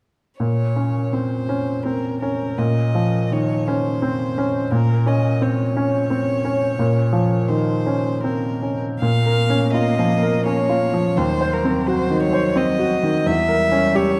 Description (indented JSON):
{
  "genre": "classical, slow romantic movement for piano quartet",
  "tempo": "85 BPM",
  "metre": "3/4",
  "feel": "rubato",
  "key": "Bb minor",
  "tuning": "A4 = 440 Hz",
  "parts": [
    { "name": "clear violin", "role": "melody", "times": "0.4-14.2 s", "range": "Bb4 to F5", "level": "-27 LUFS", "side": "equal", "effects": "none" },
    { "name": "bright baby grand piano", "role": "accompaniment", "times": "0.4-14.2 s", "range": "Eb2 to C5", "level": "-21 LUFS", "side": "equal", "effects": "none" },
    { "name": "warm cello", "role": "second line", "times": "9.0-14.2 s", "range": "Gb3 to Bb3", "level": "-27 LUFS", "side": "equal", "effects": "none" }
  ],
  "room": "moderate scoring stage reverb, RT60 1.9 s",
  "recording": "dark, warm production",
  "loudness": "-20 LUFS",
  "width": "mono",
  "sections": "0.4-9.0 A section; 9.0-14.2 B section",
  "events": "none",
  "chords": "0.4 Bbm; 11.2 Cdim/Eb; 13.3 Edim7",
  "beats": "| 0.40 1.13 1.85 | 2.58 3.31 4.02 | 4.71 5.40 6.09 | 6.78 7.49 8.24 | 9.02 9.75 10.47 | 11.18 11.88 12.57 | 13.26 13.96"
}